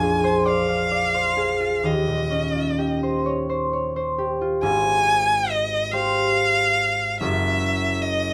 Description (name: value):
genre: classical, impressionist duo for violin and harp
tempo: 42-49 BPM (dotted quarters)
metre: 6/8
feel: rubato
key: unclear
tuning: A4 = 441 Hz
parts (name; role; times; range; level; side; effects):
- rich violin; melody; 0.0-8.3 s; Eb5 to Ab5; -24 LUFS; equal; none
- concert harp; accompaniment; 0.0-8.3 s; Gb1 to F5; -25 LUFS; equal; none
room: light reverb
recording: close, detailed microphones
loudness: -22 LUFS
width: mono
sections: 0.0-4.6 A section; 4.6-8.3 B section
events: none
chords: 0.0 Bb9; 1.9 Eb13; 4.6 Abmaj7; 7.2 N.C.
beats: 0.47 | 1.85 3.25 | 4.63 5.93 | 7.21